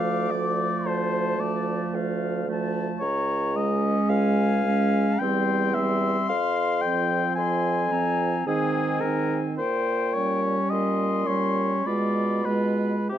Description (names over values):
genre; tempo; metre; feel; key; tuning
classical, slow romantic movement for wind quintet; 55 BPM; 3/4; rubato; F minor from 3.0 s; A4 = 438 Hz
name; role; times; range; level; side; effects
mellow concert flute; melody; 0.0-13.2 s; E5 to D6; -33 LUFS; left 9 dB; none
mellow oboe; second line; 0.0-13.2 s; G4 to Ab5; -27 LUFS; left 4 dB; none
bright clarinet; accompaniment; 0.0-13.1 s; A3 to F4; -31 LUFS; right 6 dB; none
warm French horn; accompaniment; 0.0-13.1 s; Eb3 to G#3; -27 LUFS; right 2 dB; none
dark bassoon; bass; 0.0-13.2 s; Db2 to C3; -28 LUFS; right 3 dB; none
room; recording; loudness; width
light reverb; nothing above 10.8 kHz; -22 LUFS; side -10 dB against mid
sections
0.0-13.2 A section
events
none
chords
0.0 Dm; 3.0 Db; 5.2 C/E; 6.3 Fm; 8.5 Ab; 9.6 Gdim/Bb; 11.9 Bdim7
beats
0.86 1.94 | 3.02 4.11 5.21 | 6.30 7.37 8.47 | 9.59 10.71 11.87 | 13.11